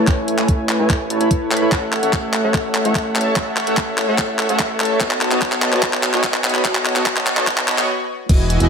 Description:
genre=future bass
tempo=146 BPM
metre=4/4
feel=half-time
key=unclear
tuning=A4 = 443 Hz
part: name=soft supersaw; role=riff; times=0.0-8.7 s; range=E3 to C#6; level=-18 LUFS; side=equal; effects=sidechain pumping, low-pass filter
part: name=fat analog bass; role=bass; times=0.0-8.7 s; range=E1 to A2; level=-27 LUFS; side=equal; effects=sidechain pumping, high-pass filter
part: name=electronic kick drum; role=drums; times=0.1-8.4 s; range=none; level=-18 LUFS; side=equal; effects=none
part: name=pop drum kit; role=drums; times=0.1-8.7 s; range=crash cymbal, handclaps, hi-hat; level=-20 LUFS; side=equal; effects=high-pass filter on snare, high-pass filter on hats, high-pass filter on cymbals
room=wet digital room reverb, RT60 1.1 s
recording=high-pass filter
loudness=-15 LUFS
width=side -6 dB against mid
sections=0.0-8.3 A section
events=build-up 0.0-8.3; drum fill 0.0-7.9; filter sweep on supersaw synth 0.0-8.3; filter sweep 0.0-8.3; stop 7.9-8.3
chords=0.0 Amaj7; 1.7 A6; 5.0 B7

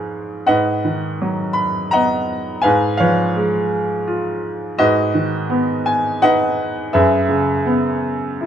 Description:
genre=classical, lyrical solo piano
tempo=84 BPM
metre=3/4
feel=rubato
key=G# minor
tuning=A4 = 444 Hz
part: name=bright baby grand piano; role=solo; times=0.0-8.5 s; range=F#2 to B5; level=-16 LUFS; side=equal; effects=none
room=light reverb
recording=close, detailed microphones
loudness=-16 LUFS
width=side -9 dB against mid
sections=0.0-8.5 A section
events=none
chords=0.5 G#m7; 2.6 C#7/G#; 4.8 G#m7; 6.9 F#9sus4

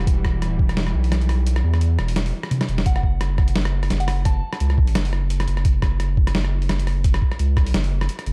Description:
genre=half-time drum and bass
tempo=172 BPM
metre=4/4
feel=swing 56% on 16ths, half-time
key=F# phrygian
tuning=A4 = 440 Hz
part: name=bowed-like drone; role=sustained chords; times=0.0-2.8 s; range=E3 to F#4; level=-34 LUFS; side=equal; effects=built-in reverb, phaser, sidechain pumping
part: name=saturated sub bass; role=bass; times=0.0-8.3 s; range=E1 to E2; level=-23 LUFS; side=equal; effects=none
part: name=boom bap sampler-style drum kit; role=drums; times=0.1-8.3 s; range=hi-hat, rim click, snare drum, toms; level=-29 LUFS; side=equal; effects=none
part: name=electronic kick drum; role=drums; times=0.1-0.7, 2.9-7.6 s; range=none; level=-21 LUFS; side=equal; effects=none
part: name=soft synth bell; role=melody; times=2.9-4.6 s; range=F#5 to A5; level=-37 LUFS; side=equal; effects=chorus, delay
room=little or no reverb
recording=dark, warm production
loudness=-20 LUFS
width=mono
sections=0.0-2.9 A section; 2.9-8.3 A section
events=drop 0.0-2.9, 2.9-8.3; kick drops out 1.5-2.9; drum fill 2.5-2.9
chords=0.0 Emadd9; 2.9 F#5

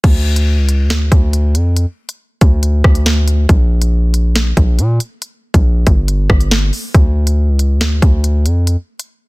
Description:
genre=hip hop, drill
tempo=139 BPM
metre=4/4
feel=half-time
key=D harmonic minor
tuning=A4 = 440 Hz
part: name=distorted 808-style bass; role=bass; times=0.0-8.8 s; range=G1 to Bb2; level=-12 LUFS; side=equal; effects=distortion
part: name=drill drum kit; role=drums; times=0.0-9.1 s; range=crash cymbal, hi-hat, kick drum, rim click, snare drum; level=-13 LUFS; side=equal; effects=none
room=digital ambience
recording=dense, heavily limited modern master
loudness=-11 LUFS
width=side -24 dB against mid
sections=0.0-9.3 A section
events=none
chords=none

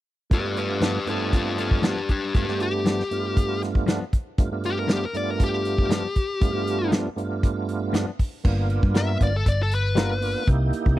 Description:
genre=straight-eighth soul blues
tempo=118 BPM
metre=4/4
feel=straight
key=G mixolydian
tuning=A4 = 440 Hz
part: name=smooth overdriven lead guitar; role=melody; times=0.3-10.5 s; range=D4 to E5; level=-27 LUFS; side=left 4 dB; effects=none
part: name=tonewheel organ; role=accompaniment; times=0.3-11.0 s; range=G2 to G4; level=-27 LUFS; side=right 4 dB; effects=slow rotary speaker, overdrive, chorus vibrato
part: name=warm soul drum kit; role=drums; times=0.3-11.0 s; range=crash cymbal, hi-hat, kick drum, snare drum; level=-21 LUFS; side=equal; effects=none
part: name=direct-recorded clean electric guitar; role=stabs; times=0.8-10.1 s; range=G2 to A#4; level=-29 LUFS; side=left 4 dB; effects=none
part: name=hollow-body short-scale picked electric bass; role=bass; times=8.5-11.0 s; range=G1 to G2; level=-23 LUFS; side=equal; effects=none
room=small room ambience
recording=dry, close 1970s-style studio recording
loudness=-21 LUFS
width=side -15 dB against mid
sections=0.3-8.4 A section; 8.4-11.0 B section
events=none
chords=0.3 G7; 8.4 G7#9; 10.5 C7#9

